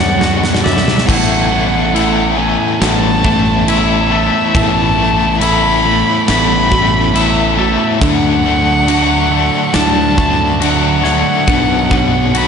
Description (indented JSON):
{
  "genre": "post-rock",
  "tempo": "69 BPM",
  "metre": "4/4",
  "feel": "straight",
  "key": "unclear",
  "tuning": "A4 = 440 Hz",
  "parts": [
    { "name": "muted violin", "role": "melody", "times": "0.0-12.5 s", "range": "E5 to B5", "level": "-16 LUFS", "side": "left 1 dB", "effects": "slapback echo" },
    { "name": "buzzing marimba with soft mallets", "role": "arpeggios", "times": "0.0-12.5 s", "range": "D4 to F#4", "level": "-26 LUFS", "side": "right 4 dB", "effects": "none" },
    { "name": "twangy electric guitar", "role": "arpeggios", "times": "0.0-12.5 s", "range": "B2 to D5", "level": "-22 LUFS", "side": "left 3 dB", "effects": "slapback echo" },
    { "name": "cranked stack guitar", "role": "riff", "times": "0.0-12.5 s", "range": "A2 to D4", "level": "-18 LUFS", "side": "left 10 dB", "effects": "overdrive, tremolo, slapback echo" },
    { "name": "sludgy distorted guitar", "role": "riff", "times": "0.0-12.5 s", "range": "B2 to A4", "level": "-19 LUFS", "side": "right 10 dB", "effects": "overdrive" },
    { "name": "fuzz fingered electric bass", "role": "bass", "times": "0.0-12.5 s", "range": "A1 to F#2", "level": "-18 LUFS", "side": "equal", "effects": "overdrive" },
    { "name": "huge arena drum kit", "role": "drums", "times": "0.2-12.5 s", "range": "crash cymbal, kick drum, snare drum, toms", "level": "-17 LUFS", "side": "equal", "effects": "none" }
  ],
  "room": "moderate lush hall reverb, RT60 2.8 s",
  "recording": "big arena sound, nothing above 10.4 kHz",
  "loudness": "-10 LUFS",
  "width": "side -6 dB against mid",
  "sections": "0.0-1.1 A section; 1.1-12.5 B section",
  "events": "build-up 0.0-1.1; drum fill 0.0-1.1",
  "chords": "0.0 Bm; 1.1 Asus2; 8.0 Dmaj7; 11.5 Bm"
}